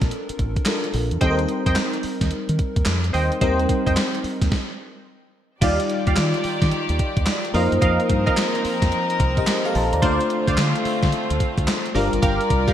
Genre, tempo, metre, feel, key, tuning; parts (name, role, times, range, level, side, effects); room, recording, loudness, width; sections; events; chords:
R&B, new jack swing; 109 BPM; 4/4; swing 64% on 16ths; A4 = 440 Hz
FM electric piano with soft pad layer; accompaniment; 0.0-12.7 s; G3 to Bb5; -24 LUFS; left 1 dB; chorus
deep dub fingered electric bass; bass; 0.0-12.7 s; G1 to Eb3; -23 LUFS; equal
gated 80s digital drum machine; drums; 0.0-12.7 s; crash cymbal, handclaps, hi-hat, kick drum, snare drum; -23 LUFS; equal; gated reverb, gated reverb snare
funky polysynth comp; stabs; 1.2-12.7 s; G4 to G5; -26 LUFS; right 1 dB; chorus, digital delay
warm studio string section; sustained chords; 5.6-12.7 s; D3 to D5; -25 LUFS; left 1 dB
wet plate reverb, RT60 2.0 s; bright 1980s-style digital production; -18 LUFS; side -10 dB against mid
0.0-5.6 A section; 5.6-12.7 B section
stop 4.5-5.6
0.0 Bbmaj7; 1.2 Eb6; 5.6 Ebmaj9; 7.5 F7sus4; 10.0 Dm7; 12.0 Gm7